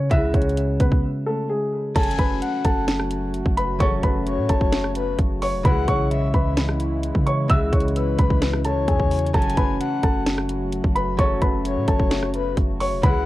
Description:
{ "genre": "hip hop, trap", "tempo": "130 BPM", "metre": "4/4", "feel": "half-time", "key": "F# minor", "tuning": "A4 = 440 Hz", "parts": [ { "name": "dark concert grand piano", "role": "melody", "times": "0.0-13.3 s", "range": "G#3 to E6", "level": "-26 LUFS", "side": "equal", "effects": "tape echo" }, { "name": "concert harp", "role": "accompaniment", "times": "0.0-13.3 s", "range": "C#3 to A4", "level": "-26 LUFS", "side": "equal", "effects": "none" }, { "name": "warm 808-style bass", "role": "bass", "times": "0.0-13.3 s", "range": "E1 to C#3", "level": "-26 LUFS", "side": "equal", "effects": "none" }, { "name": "trap drum kit", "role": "drums", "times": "0.1-13.1 s", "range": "crash cymbal, hi-hat, kick drum, rim click, snare drum", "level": "-22 LUFS", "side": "equal", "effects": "none" }, { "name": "breathy flute-like synth lead", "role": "second line", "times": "2.0-13.3 s", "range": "B4 to G#5", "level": "-29 LUFS", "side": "left 8 dB", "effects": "chorus, tape echo" }, { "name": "dark analog pad", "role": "sustained chords", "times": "2.0-13.3 s", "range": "C#3 to F#4", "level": "-31 LUFS", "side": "equal", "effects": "chorus" } ], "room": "light reverb", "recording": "cassette tape", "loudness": "-19 LUFS", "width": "side -16 dB against mid", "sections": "0.0-2.0 A section; 2.0-13.3 B section", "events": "break 1.0-2.0", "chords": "0.0 C#m; 2.0 F#m; 5.6 C#m; 9.3 F#m" }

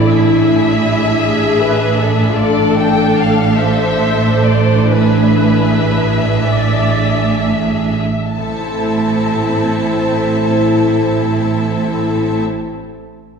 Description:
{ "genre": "classical, slow romantic movement for symphony orchestra", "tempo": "29-53 BPM (dotted quarters)", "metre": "6/8", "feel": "rubato", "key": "A minor", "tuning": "A4 = 439 Hz", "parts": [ { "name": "warm symphonic violin section", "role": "melody", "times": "0.0-12.4 s", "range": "D5 to A5", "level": "-20 LUFS", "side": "left 2 dB", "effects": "none" }, { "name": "bright symphonic violin section", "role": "second line", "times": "0.0-12.4 s", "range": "D4 to E5", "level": "-22 LUFS", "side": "left 3 dB", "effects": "none" }, { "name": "clear symphonic viola section", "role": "accompaniment", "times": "0.0-12.4 s", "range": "C4 to D5", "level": "-18 LUFS", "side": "left 1 dB", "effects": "none" }, { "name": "concert harp", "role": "arpeggios", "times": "0.0-12.8 s", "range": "A2 to E5", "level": "-22 LUFS", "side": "left 7 dB", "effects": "none" }, { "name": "rich symphonic cello section", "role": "bass", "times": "0.0-12.4 s", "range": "A2", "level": "-18 LUFS", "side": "right 3 dB", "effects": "none" }, { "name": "rich symphonic double bass section", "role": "bass", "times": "0.0-12.4 s", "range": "A1", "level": "-18 LUFS", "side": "right 6 dB", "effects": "none" } ], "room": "wet concert hall reverb, RT60 1.9 s", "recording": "heard from further back in the room", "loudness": "-12 LUFS", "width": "side -6 dB against mid", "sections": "0.0-8.4 A section; 8.4-12.2 B section", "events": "slowing down 1.2-8.4", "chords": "0.1 E7/A; 2.4 Dm/A; 4.9 E7/A; 8.4 Am" }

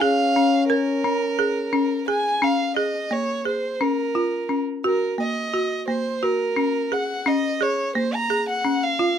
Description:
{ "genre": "contemporary instrumental, contemporary", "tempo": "174 BPM (eighths)", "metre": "7/8", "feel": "straight", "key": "Bb minor", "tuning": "A4 = 440 Hz", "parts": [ { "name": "dark violin", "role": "melody", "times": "0.0-9.2 s", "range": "Bb4 to Bb5", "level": "-24 LUFS", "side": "right 2 dB", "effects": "none" }, { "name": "mellow French horn", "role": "second line", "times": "0.0-2.1 s", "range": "Db4", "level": "-24 LUFS", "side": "left 3 dB", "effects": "none" }, { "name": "folk marimba with hard mallets", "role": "arpeggios", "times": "0.0-9.2 s", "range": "Bb3 to Bb4", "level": "-23 LUFS", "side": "left 1 dB", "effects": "none" } ], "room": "light reverb", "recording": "close, detailed microphones", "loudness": "-20 LUFS", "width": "side -8 dB against mid", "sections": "0.0-2.4 A section; 2.4-9.2 A section", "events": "none", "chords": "0.0 Bbm7; 4.8 Ebm; 7.3 Bbm7" }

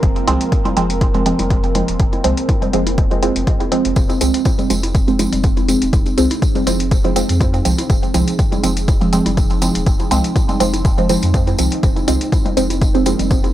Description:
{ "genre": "dub techno", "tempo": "122 BPM", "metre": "4/4", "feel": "swing 54% on 16ths", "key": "F minor", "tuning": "A4 = 440 Hz", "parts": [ { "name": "deep dark ambient pad", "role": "sustained chords", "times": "0.0-13.5 s", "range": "C4 to Bb4", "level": "-24 LUFS", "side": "right 1 dB", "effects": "chorus, built-in reverb, sidechain pumping" }, { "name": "soft dub sub bass", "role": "bass", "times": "0.0-13.5 s", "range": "Eb1 to F2", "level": "-21 LUFS", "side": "equal", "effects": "tube saturation, sidechain pumping" }, { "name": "electronic hi-hat", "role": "drums", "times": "0.0-13.5 s", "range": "none", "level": "-27 LUFS", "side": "left 3 dB", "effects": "none" }, { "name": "electronic kick drum", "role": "drums", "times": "0.0-13.4 s", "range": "none", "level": "-17 LUFS", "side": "equal", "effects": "none" }, { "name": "filtered dub chord stab", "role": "stabs", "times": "0.3-13.3 s", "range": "F3 to C4", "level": "-19 LUFS", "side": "right 2 dB", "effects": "phaser, dub echo" }, { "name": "bongos and congas", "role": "percussion", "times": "0.3-13.5 s", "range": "none", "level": "-28 LUFS", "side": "left 2 dB", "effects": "sidechain pumping on perc, dub echo" }, { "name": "tambourine", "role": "percussion", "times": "4.0-13.5 s", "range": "none", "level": "-29 LUFS", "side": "right 3 dB", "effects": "none" } ], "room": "little or no reverb", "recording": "dry, gritty hardware recording", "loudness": "-14 LUFS", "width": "side -13 dB against mid", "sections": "0.0-13.5 A section", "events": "none", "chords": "0.0 Fm" }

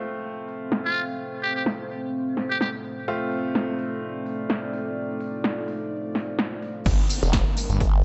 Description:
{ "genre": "bass house", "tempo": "127 BPM", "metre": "4/4", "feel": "swing 55% on 16ths", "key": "unclear", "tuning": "A4 = 440 Hz", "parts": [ { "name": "dark analog pad", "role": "sustained chords", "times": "0.1-8.0 s", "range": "G3 to D5", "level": "-36 LUFS", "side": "equal", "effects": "chorus, sidechain pumping" }, { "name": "bright baby grand piano", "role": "stabs", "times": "0.0-6.8 s", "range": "A3 to F4", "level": "-36 LUFS", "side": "equal", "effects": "sidechain pumping, dub echo" }, { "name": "big-room dance drum kit", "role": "drums", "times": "0.0-7.9 s", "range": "crash cymbal, hi-hat, snare drum, tambourine", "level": "-31 LUFS", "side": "equal", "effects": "overdrive, low-pass filter on snare, low-pass filter on hats, low-pass filter on cymbals, low-pass filter on perc, low-pass filter on room" }, { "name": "warbly tape-like pad", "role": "texture", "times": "0.1-8.0 s", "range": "C4 to G5", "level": "-37 LUFS", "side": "equal", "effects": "chorus, built-in reverb, sidechain pumping" }, { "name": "trumpet with metal mute", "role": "melody", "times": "0.8-2.7 s", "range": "F4 to G4", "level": "-30 LUFS", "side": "equal", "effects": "dub echo" }, { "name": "phased detuned saw bass", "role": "bass", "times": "6.9-7.8 s", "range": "G1", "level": "-26 LUFS", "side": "equal", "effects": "phaser, tube saturation, sidechain pumping" }, { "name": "electronic kick drum", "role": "drums", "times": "6.9-7.9 s", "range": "none", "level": "-26 LUFS", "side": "equal", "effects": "overdrive" }, { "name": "vintage drum kit", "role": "drums", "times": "6.9-7.9 s", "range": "hi-hat, snare drum", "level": "-45 LUFS", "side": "equal", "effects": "none" }, { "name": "downlifter", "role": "sound effects", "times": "6.9-8.0 s", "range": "none", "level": "-39 LUFS", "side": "equal", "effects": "none" }, { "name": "formant-sweep wobble bass", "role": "bass", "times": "7.2-8.0 s", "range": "F1 to G1", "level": "-24 LUFS", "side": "equal", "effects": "chorus, tube saturation, sidechain pumping" } ], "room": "light reverb", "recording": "nothing above 8.0 kHz", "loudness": "-27 LUFS", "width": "mono", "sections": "0.0-6.9 A section; 6.9-8.0 B section", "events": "drop 6.9-8.0", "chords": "0.0 F; 6.9 Gm" }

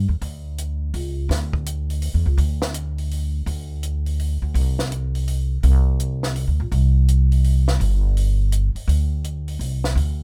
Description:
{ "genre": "modal jazz", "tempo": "166 BPM", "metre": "3/4", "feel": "swing 64% on 8ths", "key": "unclear", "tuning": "A4 = 440 Hz", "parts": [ { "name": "upright bass", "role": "bass", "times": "0.0-10.2 s", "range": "G1 to E2", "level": "-21 LUFS", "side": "equal", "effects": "none" }, { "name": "compact cocktail drum kit", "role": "drums", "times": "0.2-10.1 s", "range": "hi-hat, kick drum, snare drum", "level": "-33 LUFS", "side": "equal", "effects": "none" } ], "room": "little or no reverb", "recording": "none", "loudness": "-21 LUFS", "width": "mono", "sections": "0.0-10.2 A section", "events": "none", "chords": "none" }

